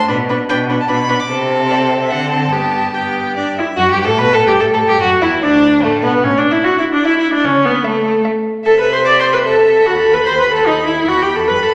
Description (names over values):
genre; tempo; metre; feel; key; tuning
quick classical-period movement for string quartet; 148 BPM; 3/4; straight; G major; A4 = 440 Hz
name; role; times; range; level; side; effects
clear violin; melody; 0.0-11.7 s; A4 to D6; -24 LUFS; equal; none
warm cello; bass; 0.0-11.7 s; D2 to D3; -24 LUFS; equal; none
clear violin; second line; 0.1-11.7 s; A3 to B5; -21 LUFS; equal; none
rich viola; accompaniment; 0.1-11.7 s; A3 to D5; -16 LUFS; equal; none
room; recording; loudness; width
wet recital hall reverb, RT60 1.4 s; none; -14 LUFS; mono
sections
0.0-3.8 A section; 3.8-11.7 B section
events
none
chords
0.1 Bm; 1.3 Am/C; 2.1 D7; 2.5 G; 3.8 Gmaj9/F#; 5.0 D; 6.2 A5; 7.4 A/C#; 8.7 Am/C; 9.9 B/D#; 11.1 Em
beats
| 0.10 0.50 0.90 | 1.30 1.70 2.11 | 2.53 2.95 3.37 | 3.79 4.20 4.61 | 5.01 5.42 5.83 | 6.23 6.64 7.04 | 7.44 7.84 8.25 | 8.65 9.05 9.46 | 9.86 10.26 10.67 | 11.07 11.48